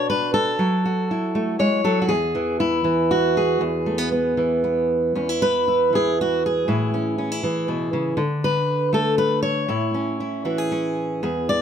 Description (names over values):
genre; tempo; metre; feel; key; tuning
folk, solo fingerstyle acoustic guitar; 119 BPM; 3/4; straight; E mixolydian; A4 = 440 Hz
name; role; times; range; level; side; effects
fingerpicked steel-string acoustic guitar; solo; 0.0-11.6 s; E2 to D5; -19 LUFS; equal; none
room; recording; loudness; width
light reverb; none; -19 LUFS; side -8 dB against mid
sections
0.0-5.2 A section; 5.2-11.6 B section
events
none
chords
0.0 Bmadd9; 0.6 F#m7; 2.1 N.C.; 3.6 E; 5.2 E5; 6.7 Amaj7; 8.2 D5; 9.7 Amaj7